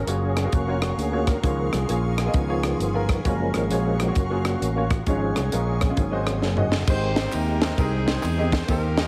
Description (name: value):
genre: uptempo gospel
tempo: 132 BPM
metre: 4/4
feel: swing 65% on 8ths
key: Db major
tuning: A4 = 442 Hz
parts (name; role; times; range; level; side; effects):
- percussive tonewheel organ; sustained chords; 0.0-9.1 s; Eb3 to G5; -30 LUFS; equal; slow rotary speaker, overdrive, chorus vibrato
- soft additive organ-like pad; sustained chords; 0.2-6.9 s; Db5 to Db6; -41 LUFS; equal; ensemble chorus, built-in reverb
- fingered electric bass; bass; 0.0-9.1 s; F1 to Fb2; -28 LUFS; equal; none
- clear grand piano; accompaniment; 0.1-9.1 s; Ab2 to Eb5; -32 LUFS; equal; none
- tight funk drum kit; drums; 0.1-9.1 s; crash cymbal, hi-hat, kick drum, ride cymbal, rim click, snare drum, toms; -28 LUFS; equal; none
- clear horn section; melody; 6.9-9.1 s; C4 to C5; -32 LUFS; equal; none
- tambourine and handclaps; percussion; 6.9-9.1 s; none; -44 LUFS; equal; none
room: light reverb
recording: heavily compressed radio sound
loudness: -23 LUFS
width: mono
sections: 0.0-6.9 A section; 6.9-9.1 B section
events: tonewheel organ solo 0.0-6.9; drum fill 6.4-6.9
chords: 0.0 Gbmaj7; 1.4 Db6; 2.3 Db7; 3.2 Gbmaj7; 5.1 Db/Ab; 6.0 Ab7; 6.9 Abmaj7